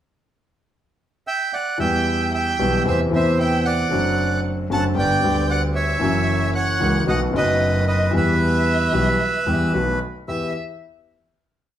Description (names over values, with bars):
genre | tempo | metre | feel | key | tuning
tango | 113 BPM | 4/4 | rubato | E minor | A4 = 439 Hz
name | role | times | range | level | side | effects
bandoneon | melody | 1.3-10.5 s | B4 to A5 | -23 LUFS | right 3 dB | none
warm violin | second line | 1.8-10.5 s | D#5 to A5 | -27 LUFS | equal | none
warm grand piano | accompaniment | 1.8-10.5 s | F#1 to G4 | -21 LUFS | left 1 dB | none
clear double bass | bass | 1.8-10.5 s | F#1 to E2 | -24 LUFS | right 1 dB | none
room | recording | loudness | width
wet large studio reverb, RT60 0.9 s | band playing live in one room | -18 LUFS | side -11 dB against mid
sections
0.0-1.8 pickup bar; 1.8-10.3 A section; 10.3-11.8 final chord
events
none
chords
0.0 Dadd9; 1.8 Em; 2.9 Amadd9/E; 3.9 D7/F#; 5.0 G; 6.0 F#7; 7.1 B7; 8.1 Em; 9.7 B7; 10.3 Em